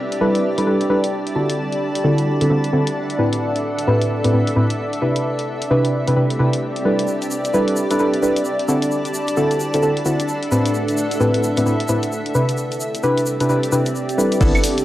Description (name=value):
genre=UK garage, two-step garage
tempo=131 BPM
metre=4/4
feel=swing 62% on 16ths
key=unclear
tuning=A4 = 438 Hz
part: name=warm analog pad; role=sustained chords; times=0.0-14.4 s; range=D4 to D5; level=-28 LUFS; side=equal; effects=chorus, sidechain pumping
part: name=granular cloud pad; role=texture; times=0.0-14.4 s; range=C4 to B5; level=-23 LUFS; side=equal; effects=built-in reverb, sidechain pumping
part: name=house drum kit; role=drums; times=0.1-14.8 s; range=claves, crash cymbal, hi-hat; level=-28 LUFS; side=left 1 dB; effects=none
part: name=deep mellow chord stab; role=stabs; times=0.2-14.8 s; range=A2 to B4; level=-18 LUFS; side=equal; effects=analog chorus
part: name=tube shaker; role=percussion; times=7.1-14.8 s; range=none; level=-32 LUFS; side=left 1 dB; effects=none
part: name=saturated sub bass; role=bass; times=14.4-14.5 s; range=G1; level=-21 LUFS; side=equal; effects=none
part: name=electronic kick drum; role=drums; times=14.4-14.5 s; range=none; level=-17 LUFS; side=equal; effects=none
room=light reverb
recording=dry, gritty hardware recording, cassette tape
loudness=-16 LUFS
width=side -14 dB against mid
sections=0.0-14.4 A section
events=none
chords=0.0 G69; 1.6 D9; 3.2 Am9; 5.0 Cmaj9; 7.1 G69; 8.9 D9; 10.5 Am9; 12.3 Cmaj9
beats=0.21 0.67 1.12 | 1.58 2.04 2.50 2.96 | 3.42 3.87 4.33 4.79 | 5.25 5.71 6.16 6.62 | 7.08 7.54 8.00 8.45 | 8.91 9.37 9.83 10.29 | 10.74 11.20 11.66 12.12 | 12.58 13.03 13.49 13.95 | 14.41